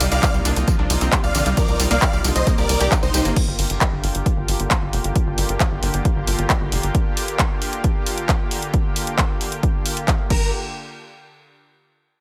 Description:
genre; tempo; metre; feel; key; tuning
uplifting trance; 134 BPM; 4/4; straight; G minor; A4 = 439 Hz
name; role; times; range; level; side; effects
lush unison pad; sustained chords; 0.0-10.5 s; C3 to G4; -30 LUFS; equal; chorus, sidechain pumping
unison pluck; arpeggios; 0.0-3.3 s; D3 to G4; -30 LUFS; equal; sidechain pumping, digital delay
tight sequencer bass; bass; 0.0-6.9, 10.3-10.5 s; F1 to C2; -25 LUFS; equal; sidechain pumping
big-room dance drum kit; drums; 0.0-10.4 s; crash cymbal, handclaps, hi-hat, ride cymbal, tambourine; -26 LUFS; equal; sidechain pumping on hats, sidechain pumping on cymbals, sidechain pumping on perc
big supersaw lead; melody; 0.1-3.2, 10.3-10.5 s; Eb4 to F5; -26 LUFS; equal; sidechain pumping, tape echo
electronic kick drum; drums; 0.2-10.4 s; none; -23 LUFS; equal; overdrive
room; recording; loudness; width
little or no reverb; none; -20 LUFS; mono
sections
0.0-3.4 A section; 3.4-10.5 B section; 10.5-12.2 C section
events
drop 0.0-3.4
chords
0.0 Cm7; 3.4 Gm7; 10.5 N.C.

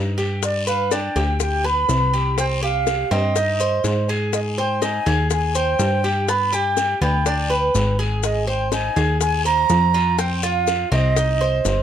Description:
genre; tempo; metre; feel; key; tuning
latin, Cuban son and guajira; 123 BPM; 4/4; straight; unclear; A4 = 444 Hz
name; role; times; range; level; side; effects
Cuban tres; arpeggios; 0.0-11.8 s; B3 to C5; -24 LUFS; right 2 dB; none
plucky analog bass; bass; 0.0-11.8 s; G1 to Ab2; -22 LUFS; equal; none
bongos; percussion; 0.2-11.8 s; none; -28 LUFS; left 7 dB; none
guiro; percussion; 0.2-11.8 s; none; -33 LUFS; left 3 dB; none
maracas; percussion; 0.2-11.8 s; none; -32 LUFS; left 9 dB; none
mellow silver concert flute; melody; 0.4-11.8 s; D5 to B5; -22 LUFS; right 2 dB; none
room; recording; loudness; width
light reverb; dark, warm production; -17 LUFS; side -9 dB against mid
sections
0.4-11.8 A section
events
none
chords
0.4 G; 2.4 Cm; 4.3 Ab; 6.3 G; 8.2 Abadd9; 10.2 F5

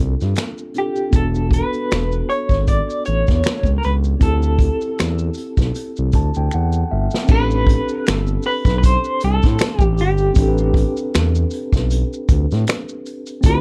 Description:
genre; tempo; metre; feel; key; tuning
R&B, neo-soul; 78 BPM; 4/4; swing 56% on 16ths; A dorian, A minor from 7.3 s; A4 = 440 Hz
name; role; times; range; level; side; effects
mellow tine electric piano; accompaniment; 0.0-13.6 s; B3 to A5; -28 LUFS; equal; none
smooth gliding synth bass; bass; 0.0-13.6 s; E1 to A2; -21 LUFS; equal; none
unplugged drum kit; drums; 0.2-13.6 s; crash cymbal, finger snaps, hi-hat, kick drum, snare drum; -19 LUFS; equal; none
maracas and finger snaps; percussion; 0.2-13.6 s; none; -39 LUFS; equal; none
electric guitar through a small old amp; melody; 0.8-13.6 s; G4 to D5; -25 LUFS; equal; tremolo
room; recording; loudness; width
little or no reverb; none; -18 LUFS; mono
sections
0.0-7.3 A section; 7.3-13.6 B section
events
tine electric piano fill 5.7-7.3; drum fill 6.5-7.3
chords
0.0 G9sus4; 1.1 E9sus4; 4.2 Am11

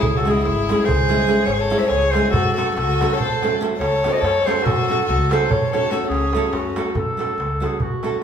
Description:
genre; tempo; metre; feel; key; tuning
balkan folk, Balkan wedding band; 286 BPM (eighths); 11/8; straight; F# minor; A4 = 441 Hz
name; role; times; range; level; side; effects
warm clarinet; melody; 0.0-8.2 s; F#4 to E5; -22 LUFS; equal; none
warm violin; second line; 0.0-7.0 s; C#4 to C#5; -24 LUFS; left 4 dB; none
upright bass; bass; 0.0-7.9 s; G#1 to F#2; -24 LUFS; equal; none
darbuka; percussion; 0.0-8.1 s; none; -26 LUFS; right 2 dB; none
nylon-string guitar; accompaniment; 0.3-8.2 s; G#3 to A4; -23 LUFS; right 2 dB; none
room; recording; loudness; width
wet large studio reverb, RT60 1.3 s; band playing live in one room; -17 LUFS; side -8 dB against mid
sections
0.0-7.0 A section; 7.0-8.2 B section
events
clarinet solo 7.0-8.2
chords
0.0 C#m; 2.3 F#m

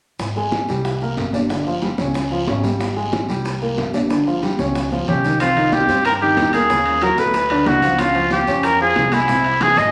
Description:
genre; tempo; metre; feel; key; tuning
Afro-Cuban jazz; 185 BPM; 4/4; straight; C minor; A4 = 439 Hz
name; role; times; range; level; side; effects
upright bass; bass; 0.2-9.9 s; G1 to G2; -30 LUFS; equal; none
bongos; percussion; 0.2-9.9 s; none; -31 LUFS; equal; none
congas; percussion; 0.2-9.9 s; none; -28 LUFS; equal; none
guiro; percussion; 0.2-9.9 s; none; -37 LUFS; equal; none
maracas; percussion; 0.2-9.9 s; none; -43 LUFS; equal; none
warm baby grand piano; accompaniment; 0.4-9.9 s; C3 to D5; -24 LUFS; equal; none
clear trumpet; melody; 5.1-9.9 s; E4 to Eb5; -18 LUFS; equal; none
timbales; percussion; 5.4-9.8 s; none; -32 LUFS; equal; none
room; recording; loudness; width
wet large studio reverb, RT60 1.2 s; none; -18 LUFS; mono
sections
0.2-5.4 A section; 5.4-9.9 B section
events
drum fill 4.9-5.4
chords
0.2 Abmaj7; 0.8 Csus2; 1.5 G5; 2.1 Db; 2.8 Abmaj7; 3.5 Csus2; 4.1 G5; 4.7 Dbadd9; 5.4 Cm7; 6.7 Ebm7; 7.3 D; 8.0 Dbmaj7; 9.3 Caug

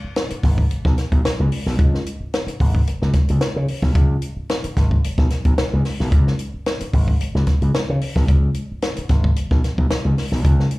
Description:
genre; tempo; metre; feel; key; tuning
funk; 111 BPM; 4/4; straight; unclear; A4 = 438 Hz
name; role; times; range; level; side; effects
slap bass with an envelope filter; bass; 0.0-10.6 s; Ab1 to Db3; -19 LUFS; equal; none
compact cocktail drum kit; drums; 0.2-10.8 s; hi-hat, kick drum, snare drum; -19 LUFS; equal; none
room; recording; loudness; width
light reverb; live gig heard through the venue's PA, club reverb; -17 LUFS; side -21 dB against mid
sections
0.0-10.8 A section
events
none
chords
none

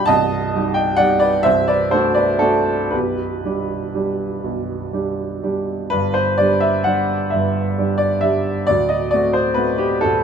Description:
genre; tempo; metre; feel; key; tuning
classical, romantic nocturne for solo piano; 39-46 BPM (dotted quarters); 12/8; rubato; G major; A4 = 439 Hz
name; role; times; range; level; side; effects
warm baby grand piano; solo; 0.0-10.2 s; B0 to B5; -16 LUFS; right 1 dB; none
room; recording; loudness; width
light reverb; minimal, uncompressed stereo recording; -16 LUFS; side -7 dB against mid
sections
0.0-5.9 A section; 5.9-10.2 B section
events
none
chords
0.1 Cm; 1.4 D7/C; 2.9 G/B; 5.9 G5; 8.7 D7

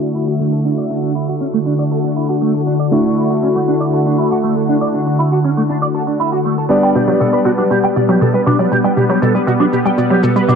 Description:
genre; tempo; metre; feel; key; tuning
nu-disco, nu disco; 119 BPM; 4/4; straight; D major; A4 = 441 Hz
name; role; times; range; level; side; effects
clear electric grand piano; accompaniment; 0.0-10.6 s; D3 to C#6; -19 LUFS; equal; ping-pong delay
lush unison pad; sustained chords; 0.0-10.6 s; D3 to C#6; -17 LUFS; left 1 dB; chorus, phaser
electric guitar with an envelope filter; riff; 0.0-10.6 s; A3 to G5; -19 LUFS; right 3 dB; ensemble chorus, low-pass filter, ping-pong delay
cabasa; drums; 0.1-10.6 s; none; -45 LUFS; equal; none
wide unison pluck; arpeggios; 7.0-10.5 s; B2 to G3; -16 LUFS; equal; cassette tape, dub echo
room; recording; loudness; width
light reverb, digital ambience; low-pass filter; -12 LUFS; side -6 dB against mid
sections
0.0-10.6 A section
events
filter sweep 0.0-10.6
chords
0.0 Dmaj9; 6.7 Gmaj7

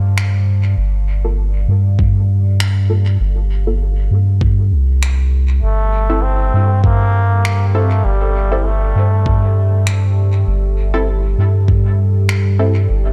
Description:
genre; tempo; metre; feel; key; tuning
ambient dub; 99 BPM; 4/4; swing 55% on 16ths; unclear; A4 = 441 Hz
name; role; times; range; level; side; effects
deep dark ambient pad; sustained chords; 0.0-13.1 s; G3 to F5; -34 LUFS; equal; chorus, built-in reverb
soft dub sub bass; bass; 0.0-13.1 s; G1 to G2; -16 LUFS; equal; none
finger snaps; drums; 0.2-12.4 s; none; -27 LUFS; equal; dub echo
filtered dub chord stab; stabs; 1.2-12.7 s; Bb3 to A4; -27 LUFS; equal; chorus, dub echo
electronic kick drum; drums; 2.0-11.8 s; none; -18 LUFS; equal; overdrive
trombone with straight mute; melody; 5.6-9.9 s; G3 to C4; -25 LUFS; equal; dub echo
room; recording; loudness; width
small room ambience; none; -15 LUFS; mono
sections
0.0-13.1 A section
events
fade-in on ambient pad 0.0-13.1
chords
0.0 Gm9; 5.6 Am/G

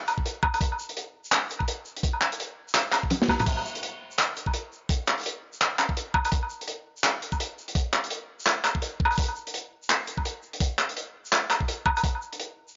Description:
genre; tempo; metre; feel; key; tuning
drum and bass; 168 BPM; 4/4; swing 59% on 16ths, half-time; none; none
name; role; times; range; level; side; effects
crunchy breakbeat drum kit; drums; 0.1-12.7 s; crash cymbal, handclaps, hi-hat, shaker, snare drum, toms, woodblock; -28 LUFS; equal; none
electronic kick drum; drums; 0.2-12.1 s; none; -30 LUFS; equal; none
room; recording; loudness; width
light reverb; dry, gritty hardware recording, transformer saturation, nothing above 7.5 kHz; -27 LUFS; mono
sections
0.0-3.5 A section; 3.5-12.8 A section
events
drop 0.0-3.5, 3.5-12.8; drum fill 3.1-3.5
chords
none

